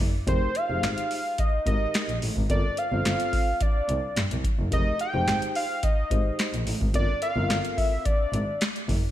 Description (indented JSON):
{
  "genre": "early-eighties boogie funk",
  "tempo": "108 BPM",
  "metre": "4/4",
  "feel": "straight",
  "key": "F dorian",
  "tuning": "A4 = 438 Hz",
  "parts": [
    { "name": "warm double bass", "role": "bass", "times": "0.0-9.0 s", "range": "F1 to G2", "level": "-28 LUFS", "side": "equal", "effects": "none" },
    { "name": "booming analog drum machine", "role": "drums", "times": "0.0-9.1 s", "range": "handclaps, hi-hat, kick drum, snare drum", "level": "-26 LUFS", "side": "equal", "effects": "overdrive" },
    { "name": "fat analog lead", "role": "melody", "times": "0.3-8.6 s", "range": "C5 to G5", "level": "-28 LUFS", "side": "equal", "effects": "chorus, slapback echo, tape echo" },
    { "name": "mellow tine electric piano", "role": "accompaniment", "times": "0.3-7.9 s", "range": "C4 to C5", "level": "-34 LUFS", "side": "left 3 dB", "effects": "slow stereo tremolo, slapback echo" }
  ],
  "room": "light reverb",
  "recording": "none",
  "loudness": "-23 LUFS",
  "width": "side -12 dB against mid",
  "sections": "0.0-9.1 A section",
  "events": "none",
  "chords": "0.3 Fm11; 2.5 G9sus4 (rootless); 4.7 Fm11; 6.9 Gm11 (rootless)",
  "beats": "| 0.28 0.83 1.39 1.94 | 2.50 3.06 3.61 4.17 | 4.72 5.28 5.83 6.39 | 6.94 7.50 8.05 8.61"
}